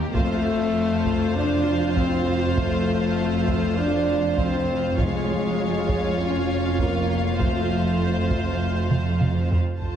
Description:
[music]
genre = cinematic, epic orchestral film score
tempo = 100 BPM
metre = 4/4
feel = straight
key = F major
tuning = A4 = 440 Hz
[part]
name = rich symphonic violin section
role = melody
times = 0.0-10.0 s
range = Bb4 to A5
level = -34 LUFS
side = left 3 dB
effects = none
[part]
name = clear studio violin section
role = second line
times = 0.0-10.0 s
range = G4 to Db5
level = -32 LUFS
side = equal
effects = none
[part]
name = warm symphonic viola section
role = accompaniment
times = 0.0-10.0 s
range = F4 to G4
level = -32 LUFS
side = right 2 dB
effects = none
[part]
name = rich studio cello section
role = bass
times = 0.0-10.0 s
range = Eb2 to F2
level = -28 LUFS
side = right 2 dB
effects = none
[part]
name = rich symphonic double bass section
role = bass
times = 0.0-10.0 s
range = F1 to Eb2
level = -28 LUFS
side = right 3 dB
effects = none
[part]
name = warm French horn section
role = sustained chords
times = 0.1-10.0 s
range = Ab3 to A4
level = -24 LUFS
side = left 3 dB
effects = none
[part]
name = taiko ensemble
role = drums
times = 0.1-10.0 s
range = none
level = -27 LUFS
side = right 1 dB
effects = none
[part]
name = timpani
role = percussion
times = 5.0-5.9 s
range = F2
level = -33 LUFS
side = left 1 dB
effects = none
[sound]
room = wet scoring stage reverb, RT60 1.6 s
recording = heavily compressed radio sound, nothing above 10.6 kHz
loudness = -20 LUFS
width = side -9 dB against mid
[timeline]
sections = 0.0-9.8 A section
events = drum fill 8.9-9.8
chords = 0.2 F; 5.0 Db/F; 7.4 F

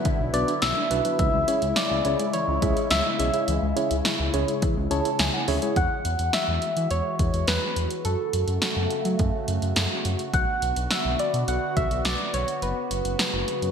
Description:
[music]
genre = synth-pop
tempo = 105 BPM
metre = 4/4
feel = straight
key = B dorian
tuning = A4 = 440 Hz
[part]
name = phased analog pad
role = sustained chords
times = 0.0-13.7 s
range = C#3 to F#4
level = -31 LUFS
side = equal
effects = phaser, chorus
[part]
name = warbly dusty pluck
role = arpeggios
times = 0.0-5.7 s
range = D3 to E5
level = -33 LUFS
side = left 2 dB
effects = chorus, digital delay
[part]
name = punchy analog drum machine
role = drums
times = 0.1-13.7 s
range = hi-hat, kick drum, snare drum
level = -27 LUFS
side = equal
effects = gated reverb
[part]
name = smooth synth bass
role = bass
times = 0.2-13.7 s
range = F#1 to F#3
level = -28 LUFS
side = equal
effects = none
[part]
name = soft struck synth lead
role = melody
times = 0.3-13.7 s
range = A4 to F#5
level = -27 LUFS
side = equal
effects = chorus, phaser, digital delay
[part]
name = tine electric piano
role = accompaniment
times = 0.3-5.8 s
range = D4 to A5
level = -29 LUFS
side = equal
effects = medium stereo tremolo
[sound]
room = wet lush hall reverb, RT60 1.7 s, digital ambience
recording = bright 1980s-style digital production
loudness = -22 LUFS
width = side -7 dB against mid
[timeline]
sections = 0.0-5.8 A section; 5.8-13.7 B section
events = tine electric piano fill 4.6-5.8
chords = 0.0 Bm; 1.2 C#m; 5.8 Eadd9; 8.1 F#m; 10.3 Bm; 12.6 F#sus4

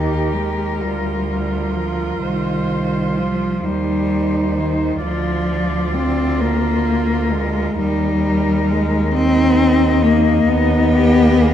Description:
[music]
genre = classical, lyrical piece for cello ensemble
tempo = 44 BPM (dotted quarters)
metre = 6/8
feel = rubato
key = Eb major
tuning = A4 = 440 Hz
[part]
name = rich cello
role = melody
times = 0.0-11.5 s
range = Bb4 to Eb5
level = -25 LUFS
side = left 6 dB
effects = none
[part]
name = rich cello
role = second line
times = 0.0-11.5 s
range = Eb4 to Ab4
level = -23 LUFS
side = right 4 dB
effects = none
[part]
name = rich cello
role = accompaniment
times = 0.0-11.5 s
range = Eb3 to C4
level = -18 LUFS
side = left 2 dB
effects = none
[part]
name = rich cello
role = bass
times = 0.0-11.5 s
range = C2 to Eb2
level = -21 LUFS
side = right 2 dB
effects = none
[sound]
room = moderate scoring stage reverb, RT60 2.0 s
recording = dark, warm production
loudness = -15 LUFS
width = side -10 dB against mid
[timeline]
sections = 0.0-11.5 A section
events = none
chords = 0.0 Eb; 2.2 Cm; 5.0 Bb/D; 7.8 Eb; 10.5 Abm/Eb (rootless)

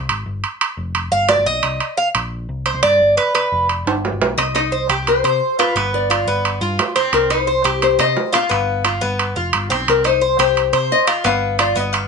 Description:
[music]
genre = latin, Cuban son and guajira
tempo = 175 BPM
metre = 4/4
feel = straight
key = C minor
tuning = A4 = 440 Hz
[part]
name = hollow-body short-scale picked electric bass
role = bass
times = 0.0-12.1 s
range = F1 to C3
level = -25 LUFS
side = left 1 dB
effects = none
[part]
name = timbales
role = percussion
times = 0.1-12.1 s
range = none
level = -20 LUFS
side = right 5 dB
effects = none
[part]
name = Cuban tres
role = arpeggios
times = 1.1-12.1 s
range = B3 to F5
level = -18 LUFS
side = right 2 dB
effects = none
[part]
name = nylon-string guitar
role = melody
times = 4.4-12.1 s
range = Bb4 to F5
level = -18 LUFS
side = left 6 dB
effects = none
[sound]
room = moderate studio reverb, RT60 0.5 s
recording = nothing above 10.6 kHz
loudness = -15 LUFS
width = side -5 dB against mid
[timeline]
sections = 0.0-4.4 A section; 4.4-12.1 B section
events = Cuban tres solo 0.0-4.4; drum fill 3.9-4.4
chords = 0.3 G7; 1.6 Cm7; 3.0 G7; 4.4 Cm; 5.8 G7; 7.1 Cm; 8.5 G7; 9.9 Cm; 11.3 G7

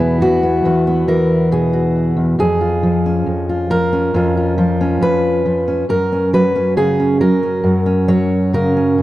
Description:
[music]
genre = folk, solo fingerstyle acoustic guitar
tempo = 68 BPM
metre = 4/4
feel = straight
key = unclear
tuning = A4 = 442 Hz
[part]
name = fingerpicked steel-string acoustic guitar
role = solo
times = 0.0-9.0 s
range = E2 to C#5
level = -13 LUFS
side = equal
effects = none
[sound]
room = moderate recital hall reverb, RT60 1.4 s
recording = dark, warm production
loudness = -13 LUFS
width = side -15 dB against mid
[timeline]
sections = 0.0-9.0 A section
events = none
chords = 0.0 Eadd9; 2.4 C#/E#; 5.9 F#

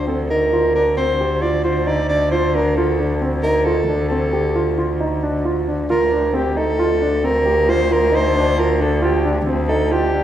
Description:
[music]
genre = contemporary instrumental, chamber music in an uneven meter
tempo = 134 BPM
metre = 7/4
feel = straight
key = D phrygian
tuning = A4 = 442 Hz
[part]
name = breathy soprano saxophone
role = melody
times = 0.0-10.2 s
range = G4 to D5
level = -19 LUFS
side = equal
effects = none
[part]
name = dark baby grand piano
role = arpeggios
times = 0.0-10.2 s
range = C4 to G4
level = -21 LUFS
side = right 2 dB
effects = none
[part]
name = dark cello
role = bass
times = 0.0-10.2 s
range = D2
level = -21 LUFS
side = equal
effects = none
[sound]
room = wet recital hall reverb, RT60 1.6 s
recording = heard from further back in the room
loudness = -15 LUFS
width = side -11 dB against mid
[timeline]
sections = 0.0-10.2 A section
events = none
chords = 0.0 Dm7

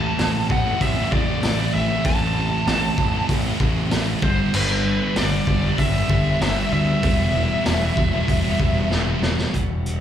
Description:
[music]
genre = quiet-loud alternative rock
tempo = 96 BPM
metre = 4/4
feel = straight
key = E minor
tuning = A4 = 442 Hz
[part]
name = bluesy overdriven lead guitar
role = melody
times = 0.0-8.9 s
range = B4 to A5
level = -25 LUFS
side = equal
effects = distortion, slapback echo, analog delay
[part]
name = thick fuzz guitar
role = riff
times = 0.0-9.5 s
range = G2 to E4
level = -27 LUFS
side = left 11 dB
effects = distortion
[part]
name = thick fuzz guitar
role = riff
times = 0.0-9.5 s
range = G2 to E4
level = -26 LUFS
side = right 10 dB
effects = distortion
[part]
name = fuzz picked electric bass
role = bass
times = 0.2-10.0 s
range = E1 to D2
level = -24 LUFS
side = equal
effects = overdrive
[part]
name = raw garage drum kit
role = drums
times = 0.2-10.0 s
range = crash cymbal, hi-hat, kick drum, snare drum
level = -24 LUFS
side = equal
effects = none
[part]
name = twelve-string electric guitar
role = arpeggios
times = 9.5-10.0 s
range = E2 to E4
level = -32 LUFS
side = right 1 dB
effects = wide subtle chorus
[sound]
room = little or no reverb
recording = live gig heard through the venue's PA, club reverb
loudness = -18 LUFS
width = side -10 dB against mid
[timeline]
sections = 0.0-9.5 A section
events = drum fill 8.9-9.5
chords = 0.0 Am; 4.2 G; 7.0 Em

